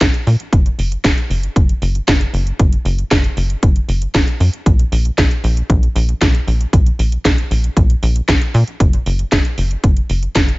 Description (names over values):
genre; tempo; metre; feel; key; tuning
italo disco; 116 BPM; 4/4; straight; unclear; A4 = 441 Hz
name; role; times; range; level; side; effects
tight sequencer bass; bass; 0.0-10.5 s; Gb1 to Bb2; -16 LUFS; equal; none
electronic kick drum; drums; 0.0-10.5 s; none; -14 LUFS; equal; none
house drum kit; drums; 0.0-10.6 s; handclaps, hi-hat, snare drum; -19 LUFS; equal; none
room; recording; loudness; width
little or no reverb; nothing above 7.7 kHz; -13 LUFS; side -22 dB against mid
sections
0.0-10.6 A section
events
none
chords
none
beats
0.01 | 0.53 1.04 1.56 2.08 | 2.60 3.11 3.63 4.15 | 4.66 5.18 5.70 6.22 | 6.73 7.25 7.77 8.29 | 8.80 9.32 9.84 10.35